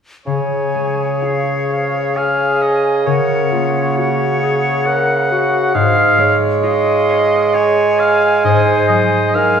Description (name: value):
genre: classical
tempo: 66 BPM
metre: 3/4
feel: rubato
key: Db major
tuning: A4 = 440 Hz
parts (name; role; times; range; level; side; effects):
- bright concert flute; second line; 0.3-9.6 s; F5 to Ab5; -21 LUFS; equal; none
- bright oboe; second line; 0.3-9.6 s; Db5 to Gb5; -20 LUFS; equal; none
- warm clarinet; second line; 0.3-9.6 s; F4 to Db5; -21 LUFS; left 2 dB; none
- clear bassoon; accompaniment; 0.3-9.6 s; Db3 to Ab3; -16 LUFS; right 3 dB; none
- concert harp; arpeggios; 0.3-9.6 s; Ab2 to Eb5; -21 LUFS; left 3 dB; none
room: wet recital hall reverb, RT60 1.6 s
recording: recorded in a church or concert hall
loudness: -12 LUFS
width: side -7 dB against mid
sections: 0.3-9.6 A section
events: none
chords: 0.3 Db; 3.1 Ebm7/Db; 5.7 Db/Ab; 8.4 Ab7